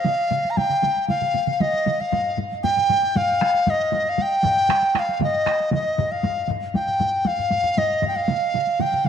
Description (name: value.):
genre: japanese traditional, taiko drum ensemble.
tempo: 117 BPM.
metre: 4/4.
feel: straight.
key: unclear.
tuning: A4 = 440 Hz.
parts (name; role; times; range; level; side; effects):
mellow large dizi; melody; 0.0-9.1 s; Eb5 to Bb5; -20 LUFS; equal; none.
taiko ensemble; percussion; 0.0-9.1 s; none; -28 LUFS; right 9 dB; none.
taiko ensemble; percussion; 0.1-9.1 s; none; -26 LUFS; equal; none.
taiko ensemble; percussion; 2.1-8.1 s; none; -31 LUFS; left 6 dB; none.
room: wet plate reverb, RT60 2.6 s.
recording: 1960s-style stereo with parts hard left and right.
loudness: -19 LUFS.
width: side -8 dB against mid.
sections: 0.0-9.1 A section.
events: none.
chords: none.